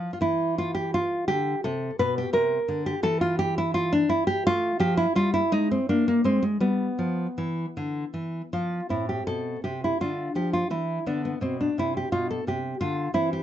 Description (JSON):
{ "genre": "classical, baroque-style dance for nylon-string guitar", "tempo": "52-58 BPM (dotted quarters)", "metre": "6/8", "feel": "rubato", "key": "C major", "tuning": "A4 = 440 Hz", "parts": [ { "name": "nylon-string guitar", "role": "solo", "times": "0.0-13.4 s", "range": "A2 to B4", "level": "-23 LUFS", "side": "equal", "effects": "none" } ], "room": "light reverb", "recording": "nothing above 7.8 kHz", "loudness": "-23 LUFS", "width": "side -11 dB against mid", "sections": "0.0-8.9 A section; 8.9-13.4 B section", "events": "none", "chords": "0.2 C/E (rootless); 2.3 C (rootless); 4.4 F; 5.5 Abadd9; 6.6 N.C.; 8.9 Am; 10.0 Dm; 11.0 Bdim" }